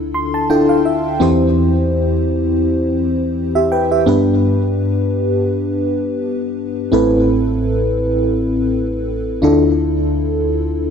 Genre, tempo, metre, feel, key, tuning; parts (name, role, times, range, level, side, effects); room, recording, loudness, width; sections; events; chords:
pop; 84 BPM; 4/4; swing 55% on 16ths; A minor; A4 = 440 Hz
FM electric piano with soft pad layer; solo; 0.0-10.9 s; A1 to C6; -14 LUFS; equal; chorus, tremolo, ping-pong delay
light reverb; -14 LUFS; side -7 dB against mid
0.0-10.9 A section
FM electric piano fill 0.0-1.2
0.0 Dmadd9; 1.2 C/E; 4.1 G; 6.9 Amadd9; 9.4 Dmadd9